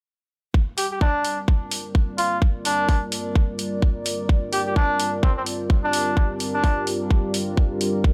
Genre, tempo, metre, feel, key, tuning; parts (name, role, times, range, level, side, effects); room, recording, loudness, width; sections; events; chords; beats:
bass house; 128 BPM; 4/4; swing 60% on 16ths; G minor; A4 = 439 Hz
deep dark ambient pad; sustained chords; 1.8-8.1 s; G3 to Bb4; -34 LUFS; equal; chorus, built-in reverb, sidechain pumping
electronic kick drum; drums; 0.5-8.1 s; -21 LUFS; equal; overdrive, studio reverb
warbly tape-like pad; texture; 0.9-8.1 s; G3 to D5; -32 LUFS; equal; chorus, built-in reverb, sidechain pumping
trumpet with bucket mute; melody; 0.8-6.9 s; C4 to G4; -26 LUFS; equal; digital delay
electronic hi-hat; drums; 0.8-7.9 s; -30 LUFS; equal; overdrive, studio reverb
digital ambience; -22 LUFS; mono
0.5-8.1 A section
0.5 Gm
| 0.54 1.01 1.48 1.95 | 2.42 2.89 3.36 3.82 | 4.29 4.76 5.23 5.70 | 6.17 6.64 7.11 7.57 | 8.04